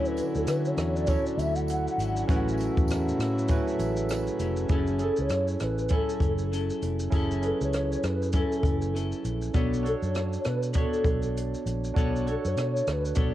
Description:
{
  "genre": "indie pop, bedroom pop",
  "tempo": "99 BPM",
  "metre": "4/4",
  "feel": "swing 60% on 16ths",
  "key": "unclear",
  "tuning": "A4 = 440 Hz",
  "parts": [
    { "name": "hollow clarinet-like synth lead", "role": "melody", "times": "0.0-13.3 s", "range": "A4 to F#5", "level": "-31 LUFS", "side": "left 1 dB", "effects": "ensemble chorus, cassette tape" },
    { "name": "barky tine electric piano", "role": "accompaniment", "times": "0.0-13.3 s", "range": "C#4 to G#5", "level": "-32 LUFS", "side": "right 6 dB", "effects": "cassette tape" },
    { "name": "clean electric guitar", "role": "accompaniment", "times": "0.0-13.3 s", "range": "A2 to C#5", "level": "-34 LUFS", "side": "left 7 dB", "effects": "wide subtle chorus, warbly pitch drift, cassette tape" },
    { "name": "pedal harmonium", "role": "sustained chords", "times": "0.0-4.7 s", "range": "C#3 to E4", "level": "-33 LUFS", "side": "left 1 dB", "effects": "cassette tape" },
    { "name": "vintage muted fingered electric bass", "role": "bass", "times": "0.0-13.3 s", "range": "F1 to D3", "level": "-30 LUFS", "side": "equal", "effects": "tube saturation" },
    { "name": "compact cocktail drum kit", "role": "drums", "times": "0.1-13.3 s", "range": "hi-hat, kick drum, rim click, shaker", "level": "-29 LUFS", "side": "equal", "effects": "cassette tape" },
    { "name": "tambourine", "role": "percussion", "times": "0.2-4.6 s", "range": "none", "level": "-51 LUFS", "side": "right 10 dB", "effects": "none" }
  ],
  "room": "light reverb, small room ambience",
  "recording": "home recording on cassette",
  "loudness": "-25 LUFS",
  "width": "side -13 dB against mid",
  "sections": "0.0-4.7 A section; 4.7-13.3 B section",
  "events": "soft synth lead solo 0.0-4.7",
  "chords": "0.0 Dmaj9; 2.3 A6; 4.7 F#m7; 9.5 Bm9"
}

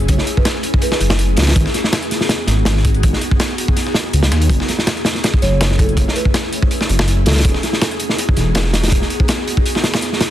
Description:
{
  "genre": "drum and bass, jungle",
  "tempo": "163 BPM",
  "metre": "4/4",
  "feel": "straight",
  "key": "F# dorian",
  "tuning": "A4 = 439 Hz",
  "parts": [
    { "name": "ethereal airy pad", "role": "sustained chords", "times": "0.0-10.3 s", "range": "A3 to G#4", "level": "-23 LUFS", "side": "equal", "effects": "ensemble chorus, built-in reverb, vintage 12-bit sampler grit" },
    { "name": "dark detuned saw bass", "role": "bass", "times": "0.0-9.0 s", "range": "E1 to D#2", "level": "-16 LUFS", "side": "equal", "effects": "none" },
    { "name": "breakbeat sampler-style drum kit", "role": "drums", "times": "0.0-10.3 s", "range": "hi-hat, snare drum", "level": "-26 LUFS", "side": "left 2 dB", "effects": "high-pass filter on hats, high-pass filter on snare" },
    { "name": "crunchy breakbeat drum kit", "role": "drums", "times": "0.1-10.3 s", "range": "hi-hat, kick drum, snare drum", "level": "-16 LUFS", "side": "equal", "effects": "none" },
    { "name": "buzzing marimba with soft mallets", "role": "melody", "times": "0.4-1.0, 5.4-7.5 s", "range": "A4 to C#5", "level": "-27 LUFS", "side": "right 2 dB", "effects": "dub echo" }
  ],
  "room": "little or no reverb",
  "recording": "dense, heavily limited modern master",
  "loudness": "-13 LUFS",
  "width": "side -12 dB against mid",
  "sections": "0.0-10.3 A section",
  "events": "none",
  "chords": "0.0 F#m9; 1.6 G#m7; 4.5 F#m9; 7.4 Emaj9"
}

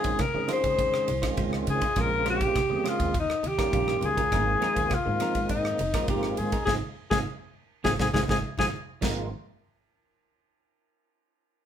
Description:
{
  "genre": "electric jazz fusion",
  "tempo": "102 BPM",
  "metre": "4/4",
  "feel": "straight",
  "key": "Ab major",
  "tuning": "A4 = 441 Hz",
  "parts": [
    { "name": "breathy alto saxophone", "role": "melody", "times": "0.0-8.7 s", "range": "Eb4 to C5", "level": "-26 LUFS", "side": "left 2 dB", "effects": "none" },
    { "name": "tonewheel organ", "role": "accompaniment", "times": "0.0-9.3 s", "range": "Db3 to Ab4", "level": "-33 LUFS", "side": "right 2 dB", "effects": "slow rotary speaker, overdrive, chorus vibrato" },
    { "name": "clean electric guitar", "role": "stabs", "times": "0.0-9.3 s", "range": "F3 to C5", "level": "-37 LUFS", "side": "right 5 dB", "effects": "none" },
    { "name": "modern studio drum kit", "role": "drums", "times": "0.0-9.2 s", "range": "crash cymbal, kick drum, ride cymbal, rim click, snare drum", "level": "-31 LUFS", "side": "equal", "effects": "none" },
    { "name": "upright bass", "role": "bass", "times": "0.1-9.3 s", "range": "F1 to Db3", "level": "-33 LUFS", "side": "right 1 dB", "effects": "none" },
    { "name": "congas", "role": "percussion", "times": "0.2-9.3 s", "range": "none", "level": "-36 LUFS", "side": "equal", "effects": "none" }
  ],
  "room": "moderate studio reverb, RT60 0.7 s",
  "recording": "band playing live in one room",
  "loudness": "-24 LUFS",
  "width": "side -9 dB against mid",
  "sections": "0.0-9.0 A section; 9.0-11.4 B section",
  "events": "band accent 6.7-9.0; drum fill 8.4-9.0",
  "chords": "0.0 Dbmaj9; 2.0 Bbm9; 3.1 Eb9; 4.3 Ab69"
}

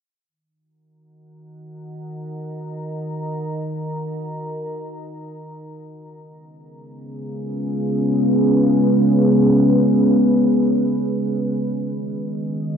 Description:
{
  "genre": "ambient",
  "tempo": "free time",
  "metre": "none",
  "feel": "none",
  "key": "Eb minor",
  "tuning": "A4 = 440 Hz",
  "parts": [
    { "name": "deep dark ambient pad", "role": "sustained chords", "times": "1.4-12.8 s", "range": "Db4 to Bb5", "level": "-18 LUFS", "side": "equal", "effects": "chorus, built-in reverb" }
  ],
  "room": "wet spring reverb, RT60 1.9 s",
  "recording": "nothing above 10.5 kHz",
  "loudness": "-17 LUFS",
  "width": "side -7 dB against mid",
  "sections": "0.3-12.8 A section",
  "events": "filter sweep on ambient pad 0.3-12.8",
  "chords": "0.3 Ebm; 5.8 Db7; 11.3 Ebm"
}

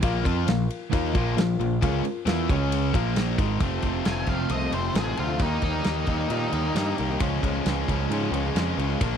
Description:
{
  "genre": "classic rock",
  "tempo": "133 BPM",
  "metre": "4/4",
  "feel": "straight",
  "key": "unclear",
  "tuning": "A4 = 440 Hz",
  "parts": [
    { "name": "dark upright piano", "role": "accompaniment", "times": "0.0-3.5 s", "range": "F4 to Ab5", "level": "-32 LUFS", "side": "left 6 dB", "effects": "none" },
    { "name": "crunchy overdriven guitar", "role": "riff", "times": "0.0-9.2 s", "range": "F2 to G4", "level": "-29 LUFS", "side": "right 13 dB", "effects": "none" },
    { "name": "overdriven electric guitar", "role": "riff", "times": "0.0-9.2 s", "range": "F2 to F4", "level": "-30 LUFS", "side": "left 13 dB", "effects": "none" },
    { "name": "growling picked electric bass", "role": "bass", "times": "0.0-9.2 s", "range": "F1 to Bb2", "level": "-28 LUFS", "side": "equal", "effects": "overdrive" },
    { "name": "big rock drum kit", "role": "drums", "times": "0.0-9.1 s", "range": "kick drum, ride cymbal, snare drum", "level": "-29 LUFS", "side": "equal", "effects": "none" },
    { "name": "picked plugged-in steel-string acoustic guitar", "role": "accompaniment", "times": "3.6-9.2 s", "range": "F2 to G4", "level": "-36 LUFS", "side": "left 12 dB", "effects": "none" },
    { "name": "octave-fuzz lead guitar", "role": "melody", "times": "4.1-6.9 s", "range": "Eb4 to Ab5", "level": "-31 LUFS", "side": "equal", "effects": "wah, distortion, slapback echo" }
  ],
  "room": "small room reverb",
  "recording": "dry, close 1970s-style studio recording",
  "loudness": "-22 LUFS",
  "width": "side -8 dB against mid",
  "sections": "0.0-3.6 A section; 3.6-9.2 B section",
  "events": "lead electric guitar solo 3.6-9.2",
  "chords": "0.0 Bb5; 2.5 Db5; 2.9 Bb5; 3.6 F6; 5.4 Eb; 7.2 Db"
}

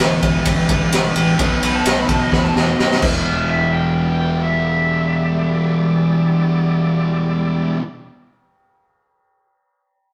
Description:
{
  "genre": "blues rock power trio and southern rock",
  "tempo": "128 BPM",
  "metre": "4/4",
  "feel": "straight",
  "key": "E minor",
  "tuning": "A4 = 439 Hz",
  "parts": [
    { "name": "lead guitar through a small cranked amp", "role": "melody", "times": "0.0-7.8 s", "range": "B4 to B5", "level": "-26 LUFS", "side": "equal", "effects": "overdrive" },
    { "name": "overdriven tonewheel organ", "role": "sustained chords", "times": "0.0-7.8 s", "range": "G3 to D5", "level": "-31 LUFS", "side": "equal", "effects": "slow rotary speaker, chorus vibrato" },
    { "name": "fuzz guitar", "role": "riff", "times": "0.0-7.8 s", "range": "E2 to B3", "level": "-20 LUFS", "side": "equal", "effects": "distortion" },
    { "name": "fuzz fingered electric bass", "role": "bass", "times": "0.0-7.8 s", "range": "E1 to F#2", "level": "-27 LUFS", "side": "equal", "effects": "overdrive" },
    { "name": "raw garage drum kit", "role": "drums", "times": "0.0-3.1 s", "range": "crash cymbal, kick drum, ride cymbal, snare drum", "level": "-21 LUFS", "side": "equal", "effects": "none" }
  ],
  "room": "wet stone room reverb, RT60 1.1 s",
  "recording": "band playing live in one room",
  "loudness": "-17 LUFS",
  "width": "mono",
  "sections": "0.0-3.3 A section; 3.3-7.0 B section",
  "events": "drum fill 2.3-3.3",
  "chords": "0.0 Em7; 1.4 B7b9; 3.0 Em7"
}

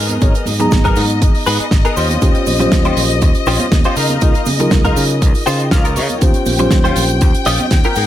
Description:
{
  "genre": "nu-disco, nu disco",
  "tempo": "120 BPM",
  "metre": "4/4",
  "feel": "straight",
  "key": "Eb mixolydian",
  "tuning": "A4 = 439 Hz",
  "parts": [
    { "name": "warm symphonic string section", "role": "sustained chords", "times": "0.0-8.1 s", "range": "Eb5 to G5", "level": "-22 LUFS", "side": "left 6 dB", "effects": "sidechain pumping" },
    { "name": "direct-recorded clean electric guitar", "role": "riff", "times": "0.0-8.1 s", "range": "Cb4 to G5", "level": "-20 LUFS", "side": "left 2 dB", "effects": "ensemble chorus, low-pass filter, dub echo" },
    { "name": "fingered electric bass", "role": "bass", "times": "0.0-8.1 s", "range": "Ab1 to Db3", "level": "-18 LUFS", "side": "equal", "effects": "none" },
    { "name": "damped 70s drum kit", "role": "drums", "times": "0.1-8.1 s", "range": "hi-hat, snare drum", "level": "-21 LUFS", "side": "right 3 dB", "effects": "small room ambience" },
    { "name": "congas and cabasa", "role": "percussion", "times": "0.1-8.1 s", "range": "none", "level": "-24 LUFS", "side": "right 3 dB", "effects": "none" },
    { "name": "mellow reed electric piano", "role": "accompaniment", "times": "0.2-8.0 s", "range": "Cb4 to Bb5", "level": "-20 LUFS", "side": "equal", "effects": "sidechain pumping, dub echo" },
    { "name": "electronic kick drum", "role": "drums", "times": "0.2-7.8 s", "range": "none", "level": "-14 LUFS", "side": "equal", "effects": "small room ambience" }
  ],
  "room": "studio reverb",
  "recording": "none",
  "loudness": "-11 LUFS",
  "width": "side -12 dB against mid",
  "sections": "0.0-8.1 A section",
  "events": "clean electric guitar fill 5.2-6.2",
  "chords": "0.0 Abmadd9; 2.0 Eb13; 4.0 Db69; 6.2 Eb13"
}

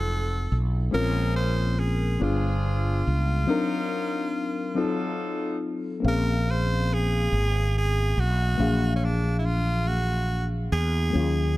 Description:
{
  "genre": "slow six-eight R&B",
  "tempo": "47 BPM (dotted quarters)",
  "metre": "6/8",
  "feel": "straight",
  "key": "unclear",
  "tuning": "A4 = 436 Hz",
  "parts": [
    { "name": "raspy tenor saxophone", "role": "melody", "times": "0.0-11.5 s", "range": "Db4 to C5", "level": "-30 LUFS", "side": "right 1 dB", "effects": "none" },
    { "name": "mellow FM electric piano", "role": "accompaniment", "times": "0.0-11.6 s", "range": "Gb3 to F5", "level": "-29 LUFS", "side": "left 3 dB", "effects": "chorus" },
    { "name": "bright horn section", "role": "stabs", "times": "0.0-5.6 s", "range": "F3 to C5", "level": "-37 LUFS", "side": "right 2 dB", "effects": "none" },
    { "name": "mellow fretless electric bass", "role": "bass", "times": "0.0-11.6 s", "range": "F1 to E2", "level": "-24 LUFS", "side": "equal", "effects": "none" }
  ],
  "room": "small room ambience",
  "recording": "dark, warm production",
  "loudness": "-23 LUFS",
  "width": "side -17 dB against mid",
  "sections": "0.0-6.0 A section; 6.0-11.6 A section",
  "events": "break 3.5-6.0",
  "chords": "0.0 F7b9; 0.9 Bbm9; 2.2 G7b9; 3.5 Cm7b5; 4.8 F7b9; 6.0 Bbm9; 8.6 Bb7b13"
}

